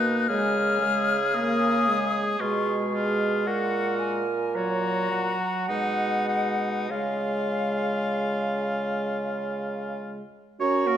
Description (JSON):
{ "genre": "classical, slow romantic movement for wind quintet", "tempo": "47-57 BPM", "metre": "3/4", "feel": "rubato", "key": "unclear", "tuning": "A4 = 439 Hz", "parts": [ { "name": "hollow concert flute", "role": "melody", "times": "0.0-11.0 s", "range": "E#5 to F#6", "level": "-29 LUFS", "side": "left 5 dB", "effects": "none" }, { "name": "bright oboe", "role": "second line", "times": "0.0-11.0 s", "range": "D#4 to C#5", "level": "-32 LUFS", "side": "left 3 dB", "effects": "none" }, { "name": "warm French horn", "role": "accompaniment", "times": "0.0-11.0 s", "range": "F#3 to C#4", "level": "-29 LUFS", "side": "equal", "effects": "none" }, { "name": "warm bassoon", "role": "bass", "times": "0.0-11.0 s", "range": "F#2 to C#3", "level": "-30 LUFS", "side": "right 2 dB", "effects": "none" }, { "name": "warm clarinet", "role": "accompaniment", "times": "0.3-11.0 s", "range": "F#4 to F#5", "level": "-31 LUFS", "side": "right 6 dB", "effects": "none" } ], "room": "wet scoring stage reverb, RT60 1.6 s", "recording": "none", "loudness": "-23 LUFS", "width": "side -10 dB against mid", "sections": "0.0-10.6 A section", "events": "none", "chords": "0.3 C#; 2.4 C#7/B; 3.5 F#/A#; 5.7 G#m7/B; 6.9 C#" }